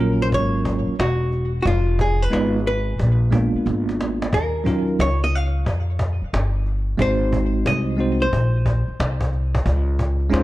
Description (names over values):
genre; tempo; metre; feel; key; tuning
hip hop, jazz-hop; 90 BPM; 4/4; swing 65% on 16ths; unclear; A4 = 439 Hz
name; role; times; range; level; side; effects
archtop guitar, miked and amplified; melody; 0.0-9.3 s; F4 to F5; -25 LUFS; equal; tape echo
bell-like tine electric piano; accompaniment; 0.0-10.4 s; Gb3 to C5; -22 LUFS; right 2 dB; fast stereo tremolo
upright bass; bass; 0.0-10.4 s; E1 to F2; -21 LUFS; equal; none
cajon; drums; 0.3-10.4 s; none; -27 LUFS; equal; none
room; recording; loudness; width
studio reverb; dark, warm production; -18 LUFS; side -16 dB against mid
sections
0.0-10.4 A section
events
drum fill 3.7-4.3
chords
0.0 Gbmaj9; 1.7 Fm7b5; 3.0 Bb7b9; 4.3 Ebm9; 7.0 Ab7; 9.7 Dbmaj9